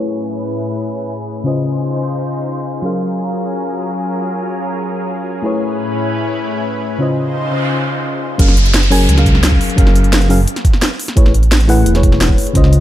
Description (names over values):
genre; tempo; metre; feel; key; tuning
liquid drum and bass; 173 BPM; 4/4; straight; unclear; A4 = 440 Hz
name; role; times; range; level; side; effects
mellow FM electric piano; accompaniment; 0.0-12.8 s; Db3 to Ab5; -18 LUFS; left 2 dB; chorus, low-pass filter, digital delay
lush unison pad; sustained chords; 0.0-8.4 s; A2 to C5; -22 LUFS; equal; chorus, sidechain pumping
downlifter and noise sweep; sound effects; 0.0-0.1, 7.3-11.2 s; none; -23 LUFS; right 1 dB; none
dark detuned saw bass; bass; 8.4-12.8 s; E1 to Db2; -12 LUFS; equal; tube saturation
drum and bass drum kit; drums; 8.4-12.8 s; hi-hat, snare drum; -18 LUFS; equal; none
electronic kick drum; drums; 8.4-12.6 s; none; -12 LUFS; equal; none
room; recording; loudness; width
digital ambience; low-pass filter; -13 LUFS; side -13 dB against mid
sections
0.0-8.4 A section; 8.4-12.8 B section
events
filter sweep on FM electric piano 0.0-8.4; filter sweep on analog synth pad 0.0-8.4; filter sweep 0.0-8.4; noise sweep 7.3-8.4; drop 8.4-12.8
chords
0.0 Amaj9; 1.5 Dbmaj9; 2.8 Gbmaj9; 5.4 Amaj9; 7.0 Dbmaj9; 8.4 Gbmaj9; 11.0 Amaj9